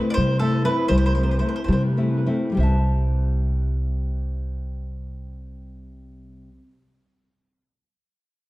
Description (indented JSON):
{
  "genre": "italian folk, Italian serenade",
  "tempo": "64-86 BPM (dotted quarters)",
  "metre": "6/8",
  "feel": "straight",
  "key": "C major",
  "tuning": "A4 = 440 Hz",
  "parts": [
    { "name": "nylon-string guitar", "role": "accompaniment", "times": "0.0-6.6 s", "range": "C3 to A5", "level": "-26 LUFS", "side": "left 2 dB", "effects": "none" },
    { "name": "mandolin", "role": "melody", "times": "0.1-1.8 s", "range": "A4 to D5", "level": "-26 LUFS", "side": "right 1 dB", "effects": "tape echo" },
    { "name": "upright bass", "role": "bass", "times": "0.2-6.6 s", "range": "C2 to C3", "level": "-22 LUFS", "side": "equal", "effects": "none" }
  ],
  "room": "moderate recital hall reverb, RT60 1.4 s",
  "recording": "dark, warm production",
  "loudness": "-20 LUFS",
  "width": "side -18 dB against mid",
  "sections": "0.0-2.6 A section; 2.6-6.3 B section",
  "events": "slowing down 0.0-2.6",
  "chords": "0.0 C6"
}